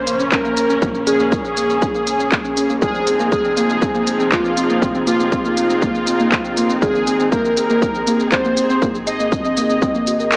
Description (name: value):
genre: melodic techno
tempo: 120 BPM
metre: 4/4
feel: straight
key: Bb minor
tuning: A4 = 440 Hz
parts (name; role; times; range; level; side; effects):
- analog synth brass; melody; 0.0-10.4 s; F4 to Eb5; -20 LUFS; equal; chorus, sidechain pumping, analog delay
- dark detuned synth bell; second line; 0.0-10.4 s; F4 to Eb5; -24 LUFS; equal; none
- dark studio string section; sustained chords; 0.0-10.4 s; Db3 to Ab4; -24 LUFS; equal; sidechain pumping
- tight sequencer bass; bass; 0.0-10.3 s; F1 to Bb1; -33 LUFS; equal; sidechain pumping
- woody wave-folded pluck; arpeggios; 0.1-10.4 s; Bb3 to Bb4; -20 LUFS; equal; chorus, sidechain pumping, analog delay
- techno drum kit; drums; 0.1-10.4 s; handclaps, hi-hat, shaker; -22 LUFS; equal; studio reverb
- electronic kick drum; drums; 0.3-9.9 s; none; -21 LUFS; equal; studio reverb
room: light reverb, digital ambience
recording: echo-heavy mix, small speaker sound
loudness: -14 LUFS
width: side -34 dB against mid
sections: 0.0-10.4 A section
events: none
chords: 0.0 Bbmadd9; 2.8 Fm7; 6.8 Ab